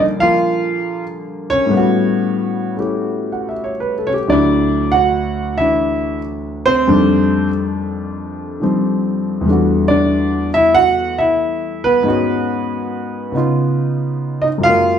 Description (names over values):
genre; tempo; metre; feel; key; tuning
solo jazz; 93 BPM; 4/4; swing 67% on 8ths; unclear; A4 = 435 Hz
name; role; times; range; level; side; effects
warm concert grand piano; solo; 0.0-15.0 s; D2 to F#5; -14 LUFS; equal; none
room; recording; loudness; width
wet large studio reverb, RT60 1.0 s; band playing live in one room; -14 LUFS; side -8 dB against mid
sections
0.0-4.3 A section; 4.3-15.0 B section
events
none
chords
0.0 Bb6; 1.7 A13; 4.3 Dadd9; 6.9 F13; 9.5 Em11; 12.0 G#m7; 13.3 C#9